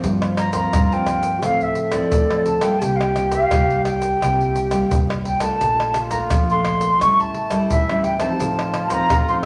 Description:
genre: samba and choro.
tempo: 86 BPM.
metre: 4/4.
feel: straight.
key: unclear.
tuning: A4 = 439 Hz.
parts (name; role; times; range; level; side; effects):
breathy trombone; second line; 0.0-9.5 s; E4 to A4; -26 LUFS; equal; none.
nylon-string guitar; accompaniment; 0.0-9.5 s; G2 to F4; -27 LUFS; equal; none.
upright bass; bass; 0.0-9.5 s; A1 to A2; -30 LUFS; equal; none.
egg shaker, surdo, pandeiro and tamborim; percussion; 0.0-9.5 s; none; -26 LUFS; equal; none.
wooden flute; melody; 0.4-9.5 s; D5 to E6; -23 LUFS; equal; none.
room: wet large studio reverb, RT60 1.0 s.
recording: none.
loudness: -19 LUFS.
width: mono.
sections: 0.0-9.5 A section.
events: none.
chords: 0.0 C7sus4/G; 1.4 Fmaj7/A; 2.8 C7sus4; 5.6 Bbmaj7; 7.0 A7; 8.4 F7/A.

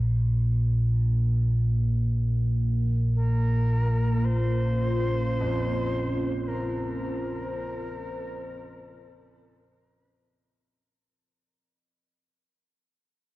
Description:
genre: dark ambient drone.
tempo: free time.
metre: none.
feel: none.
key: Bb minor.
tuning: A4 = 435 Hz.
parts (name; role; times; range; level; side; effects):
warm grand piano; arpeggios; 0.0-12.2 s; F2; -39 LUFS; left 1 dB; tape echo.
deep rumbling drone; drone; 0.0-11.1 s; Bb1 to Bb2; -24 LUFS; equal; built-in reverb.
dark analog pad; sustained chords; 2.0-11.0 s; Bb3 to C5; -32 LUFS; equal; chorus, phaser.
bright reedy shakuhachi; melody; 3.1-9.9 s; Bb4 to C5; -34 LUFS; equal; shimmer reverb.
room: wet cathedral reverb, RT60 5.0 s.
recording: worn, warbling old tape, cassette tape, warbly pitch drift.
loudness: -23 LUFS.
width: side -18 dB against mid.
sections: 0.0-11.0 A section.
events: fade-in on grand piano 0.0-11.0; fade-in on shakuhachi 0.0-11.0; fade-out 5.0-11.0.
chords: 0.0 Bbmadd9.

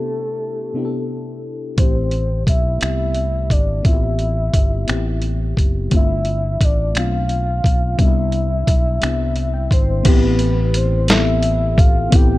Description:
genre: slow six-eight R&B.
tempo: 58 BPM (dotted quarters).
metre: 6/8.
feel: straight.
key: A minor.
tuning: A4 = 439 Hz.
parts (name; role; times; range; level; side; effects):
soft octave-layered synth lead; melody; 0.0-12.4 s; A4 to G5; -24 LUFS; equal; chorus, tremolo.
mellow FM electric piano; accompaniment; 0.0-12.4 s; C3 to C6; -24 LUFS; left 3 dB; chorus.
fretless electric bass; bass; 1.8-12.4 s; F#1 to C2; -19 LUFS; equal; none.
dusty soul sampler-style drum kit; drums; 1.8-12.3 s; crash cymbal, finger snaps, hi-hat, kick drum, snare drum; -15 LUFS; equal; none.
room: little or no reverb.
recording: dark, warm production.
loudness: -15 LUFS.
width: side -17 dB against mid.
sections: 0.0-10.1 A section; 10.1-12.4 B section.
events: FM electric piano fill 9.0-10.1.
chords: 0.0 Cmaj9; 1.8 Am9; 5.9 G7sus4; 8.0 Cmaj9; 10.1 Am9.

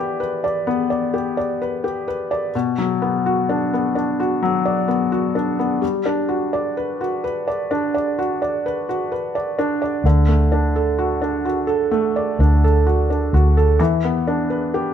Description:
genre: pop.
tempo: 64 BPM.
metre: 4/4.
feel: straight.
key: D major.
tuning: A4 = 440 Hz.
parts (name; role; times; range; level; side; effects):
felt-muted upright piano; accompaniment; 0.0-14.9 s; B2 to D5; -19 LUFS; equal; none.
vintage muted fingered electric bass; bass; 10.0-14.9 s; D2 to E2; -16 LUFS; equal; none.
room: moderate stone room reverb, RT60 1.0 s.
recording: band playing live in one room.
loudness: -17 LUFS.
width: side -8 dB against mid.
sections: 0.0-14.9 A section.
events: none.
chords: 0.0 Em7; 2.5 Bm; 5.8 Gmaj7; 10.0 D; 13.8 Em7.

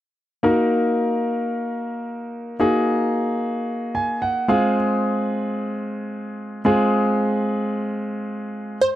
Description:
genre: dance-pop.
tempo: 111 BPM.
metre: 4/4.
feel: straight.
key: Eb dorian.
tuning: A4 = 444 Hz.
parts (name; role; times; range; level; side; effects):
clear grand piano; accompaniment; 0.4-8.8 s; Ab3 to Ab5; -20 LUFS; equal; none.
wide unison pluck; melody; 8.8-9.0 s; C5; -16 LUFS; right 1 dB; none.
room: small room ambience.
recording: dry, close 1970s-style studio recording.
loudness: -20 LUFS.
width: side -13 dB against mid.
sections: 0.4-9.0 A section.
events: grand piano fill 3.7-4.8.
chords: 0.4 Ebm; 4.5 Fm.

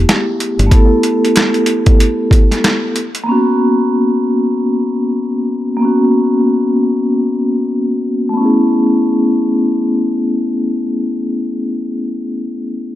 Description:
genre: hip hop, boom-bap hip-hop.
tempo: 94 BPM.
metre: 4/4.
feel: swing 61% on 16ths.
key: unclear.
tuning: A4 = 440 Hz.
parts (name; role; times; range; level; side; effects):
vibraphone with soft mallets; accompaniment; 0.0-13.0 s; A3 to A4; -13 LUFS; left 1 dB; high-pass filter, low-pass filter.
deep dub fingered electric bass; bass; 0.0-0.7 s; G1; -12 LUFS; equal; none.
boom bap sampler-style drum kit; drums; 0.1-3.3 s; hi-hat, kick drum, snare drum; -12 LUFS; equal; overdrive.
room: light reverb.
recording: none.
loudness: -12 LUFS.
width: side -14 dB against mid.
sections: 0.0-8.4 A section; 8.4-10.9 B section.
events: filter sweep on vibraphone 0.0-8.4.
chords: 0.0 F#m11 (rootless); 2.9 F#add11/A#; 8.4 Amaj9.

